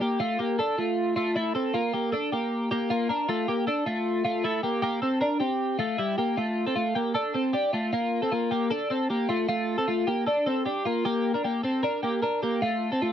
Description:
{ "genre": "indie pop", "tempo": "155 BPM", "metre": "4/4", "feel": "straight", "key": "D minor", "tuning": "A4 = 441 Hz", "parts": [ { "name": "twelve-string electric guitar", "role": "solo", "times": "0.0-13.1 s", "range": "G3 to Bb4", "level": "-24 LUFS", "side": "equal", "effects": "analog chorus, slapback echo" } ], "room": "light reverb", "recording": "dry, close 1970s-style studio recording", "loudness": "-24 LUFS", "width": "side -9 dB against mid", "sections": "0.0-6.4 A section; 6.4-13.1 B section", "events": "none", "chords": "0.2 Dmadd9 (rootless); 1.7 Bb; 3.3 Dmadd9; 4.6 Gm; 5.6 C; 6.4 Dm; 10.9 Gm; 12.6 Dm (rootless)" }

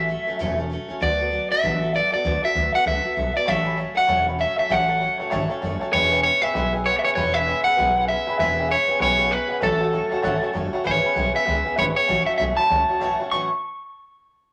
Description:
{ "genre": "rock", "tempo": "195 BPM", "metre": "4/4", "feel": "swing 61% on 8ths", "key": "A major", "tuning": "A4 = 440 Hz", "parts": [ { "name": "electric guitar at the edge of break-up", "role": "melody", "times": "0.0-13.5 s", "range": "A4 to C#6", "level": "-22 LUFS", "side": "equal", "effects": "spring reverb" }, { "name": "picked acoustic archtop guitar", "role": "accompaniment", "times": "0.0-13.5 s", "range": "A2 to A4", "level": "-31 LUFS", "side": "equal", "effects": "none" }, { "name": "upright bass", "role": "bass", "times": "0.0-13.5 s", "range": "E1 to D2", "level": "-30 LUFS", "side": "equal", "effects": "none" }, { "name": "dark upright piano", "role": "accompaniment", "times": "3.5-13.5 s", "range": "B4 to B5", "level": "-32 LUFS", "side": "equal", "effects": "none" } ], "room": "moderate studio reverb, RT60 0.6 s", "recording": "none", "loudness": "-21 LUFS", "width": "mono", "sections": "0.0-10.9 A section; 10.9-13.3 B section; 13.3-14.5 C section", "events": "none", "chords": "0.0 A6; 1.0 D6; 3.5 A6; 5.9 E6; 9.6 A6; 10.9 E6; 12.1 A6" }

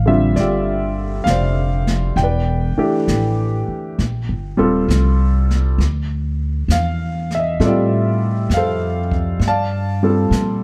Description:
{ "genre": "jazz ballad", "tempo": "66 BPM", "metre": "4/4", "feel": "swing 67% on 8ths", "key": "unclear", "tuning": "A4 = 440 Hz", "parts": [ { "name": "warm concert grand piano", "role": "accompaniment", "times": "0.0-10.6 s", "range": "D3 to A5", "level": "-21 LUFS", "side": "equal", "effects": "none" }, { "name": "upright bass", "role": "bass", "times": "0.0-10.6 s", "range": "Eb1 to Bb2", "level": "-21 LUFS", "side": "equal", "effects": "none" }, { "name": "jazz brush drum kit", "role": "drums", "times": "0.4-10.6 s", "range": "brushed snare drum, hi-hat, kick drum, snare drum", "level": "-28 LUFS", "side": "equal", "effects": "none" } ], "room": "little or no reverb", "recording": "dark, warm production", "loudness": "-18 LUFS", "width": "mono", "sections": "0.0-10.6 A section", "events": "none", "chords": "0.0 Bb69 (rootless); 2.2 Em7; 4.0 Ebadd9; 5.8 Dm11; 9.4 Gm7" }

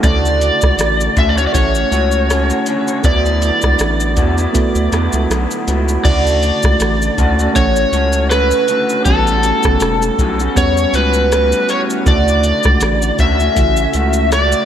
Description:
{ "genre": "indie pop, bedroom pop", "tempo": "80 BPM", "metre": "4/4", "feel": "swing 55% on 16ths", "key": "D major", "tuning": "A4 = 441 Hz", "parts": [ { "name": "overdriven slide guitar", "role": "melody", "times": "0.0-14.7 s", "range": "A4 to E5", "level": "-16 LUFS", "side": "equal", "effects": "wide subtle chorus, slapback echo" }, { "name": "electric guitar through a small old amp", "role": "accompaniment", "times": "0.0-14.7 s", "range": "A2 to F#4", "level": "-20 LUFS", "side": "left 2 dB", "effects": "lush chorus, vibrato effect, slapback echo" }, { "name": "soft electric-piano-like synth keys", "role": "accompaniment", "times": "0.0-14.7 s", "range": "C#3 to A4", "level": "-22 LUFS", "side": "right 5 dB", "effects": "chorus, cassette tape, slapback echo" }, { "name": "round analog bass", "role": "bass", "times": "0.0-14.5 s", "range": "E1 to E2", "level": "-17 LUFS", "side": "equal", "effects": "none" }, { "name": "soft vintage rhythm box", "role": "drums", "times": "0.0-14.7 s", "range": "crash cymbal, hi-hat, kick drum, rim click, shaker", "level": "-18 LUFS", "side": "equal", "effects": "none" } ], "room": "light reverb", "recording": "none", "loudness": "-12 LUFS", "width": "side -9 dB against mid", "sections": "0.0-6.1 A section; 6.1-14.7 A section", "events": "none", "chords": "0.0 Dmaj7; 3.0 D69; 6.1 Dmaj7; 9.1 A13; 12.1 Dmaj7" }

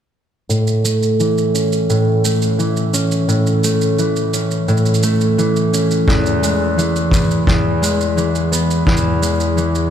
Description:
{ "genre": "folktronica", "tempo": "86 BPM", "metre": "4/4", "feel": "straight", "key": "unclear", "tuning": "A4 = 440 Hz", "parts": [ { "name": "concert harp", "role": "arpeggios", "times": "0.5-9.9 s", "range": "E2 to C#4", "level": "-14 LUFS", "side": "equal", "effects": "low-pass filter, diffuse ambient delay" }, { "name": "shaker", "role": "drums", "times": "0.5-9.9 s", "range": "none", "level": "-25 LUFS", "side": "right 5 dB", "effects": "none" }, { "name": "kick drum", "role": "drums", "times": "6.1-9.0 s", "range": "none", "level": "-17 LUFS", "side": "equal", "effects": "none" } ], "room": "moderate cathedral reverb, RT60 6.0 s", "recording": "dreamy mix soaked in reverb", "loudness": "-14 LUFS", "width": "side -9 dB against mid", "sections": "0.5-9.9 A section", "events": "filter sweep on harp 0.5-9.9", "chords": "0.5 A; 6.1 E" }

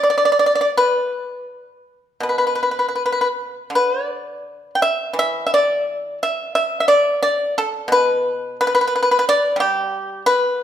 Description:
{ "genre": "chinese traditional, Chinese solo plucked strings", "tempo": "78-92 BPM", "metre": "4/4", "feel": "rubato", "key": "unclear", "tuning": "A4 = 438 Hz", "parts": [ { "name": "pipa", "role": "solo", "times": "0.0-10.6 s", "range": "B2 to G5", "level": "-16 LUFS", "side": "equal", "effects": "none" } ], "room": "moderate recital hall reverb, RT60 1.5 s", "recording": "recorded in a church or concert hall", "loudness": "-16 LUFS", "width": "side -10 dB against mid", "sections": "0.0-10.6 A section", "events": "none", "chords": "none" }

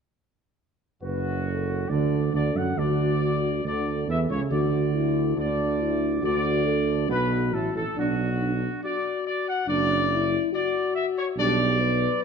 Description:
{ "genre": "classical", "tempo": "70 BPM", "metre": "4/4", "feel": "straight", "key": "D major", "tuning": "A4 = 439 Hz", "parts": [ { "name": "mellow trumpet section", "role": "melody", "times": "1.0-12.2 s", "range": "F#4 to F#5", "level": "-28 LUFS", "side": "left 2 dB", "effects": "none" }, { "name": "dark French horn section", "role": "sustained chords", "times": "1.0-12.2 s", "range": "D4 to B4", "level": "-28 LUFS", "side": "left 5 dB", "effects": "none" }, { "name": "warm trombone section", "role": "sustained chords", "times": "1.0-11.7 s", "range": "F#2 to D4", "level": "-30 LUFS", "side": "right 5 dB", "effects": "none" }, { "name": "mellow tuba", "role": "bass", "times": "1.0-12.1 s", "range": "F#1 to F#2", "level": "-27 LUFS", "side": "right 4 dB", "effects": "none" } ], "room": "wet recital hall reverb, RT60 1.7 s", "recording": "dark, warm production", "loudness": "-22 LUFS", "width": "side -6 dB against mid", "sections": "1.0-12.2 A section", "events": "none", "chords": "1.0 Dadd9/F#; 8.0 Bm; 11.4 G/B" }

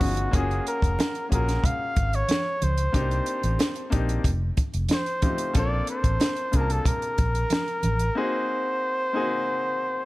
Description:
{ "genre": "lush 1970s-style soul", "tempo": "92 BPM", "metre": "4/4", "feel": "straight", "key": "unclear", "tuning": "A4 = 440 Hz", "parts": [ { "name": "clear flugelhorn", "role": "melody", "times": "0.0-10.1 s", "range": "F#4 to E#5", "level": "-27 LUFS", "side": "equal", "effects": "none" }, { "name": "warm baby grand piano", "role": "accompaniment", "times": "0.0-10.1 s", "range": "A3 to A5", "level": "-31 LUFS", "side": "left 3 dB", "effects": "none" }, { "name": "vintage muted fingered electric bass", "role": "bass", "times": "0.0-8.1 s", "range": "E#1 to C#2", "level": "-25 LUFS", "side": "equal", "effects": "none" }, { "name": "compact cocktail drum kit", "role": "drums", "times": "0.0-8.2 s", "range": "hi-hat, kick drum, snare drum", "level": "-25 LUFS", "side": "equal", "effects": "none" }, { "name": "congas", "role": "percussion", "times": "0.0-8.0 s", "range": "none", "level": "-34 LUFS", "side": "right 3 dB", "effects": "none" } ], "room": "studio reverb", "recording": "none", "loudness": "-22 LUFS", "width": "side -19 dB against mid", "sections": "0.0-10.1 A section", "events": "grand piano fill 9.8", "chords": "0.3 F#maj9; 2.9 Cm7; 4.2 F7; 5.6 A#maj7; 8.2 G#7" }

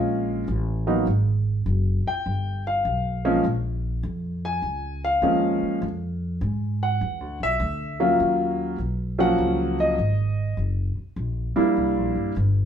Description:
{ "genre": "jazz", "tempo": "101 BPM", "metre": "4/4", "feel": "swing 67% on 8ths", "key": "Eb minor", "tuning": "A4 = 440 Hz", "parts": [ { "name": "warm concert grand piano", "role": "melody", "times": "0.0-12.3 s", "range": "F3 to Ab5", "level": "-22 LUFS", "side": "equal", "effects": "none" }, { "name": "upright bass", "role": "bass", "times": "0.0-12.7 s", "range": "Gb1 to Ab2", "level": "-25 LUFS", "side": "equal", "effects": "none" } ], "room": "moderate studio reverb, RT60 0.7 s", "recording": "band playing live in one room", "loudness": "-22 LUFS", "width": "side -8 dB against mid", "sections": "0.0-12.7 A section", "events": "none", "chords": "0.0 Bbm7; 1.1 Gbsus2; 2.3 G7; 3.4 Bbm7; 5.8 Fm; 7.0 E5; 8.2 Ebm9; 11.8 C7" }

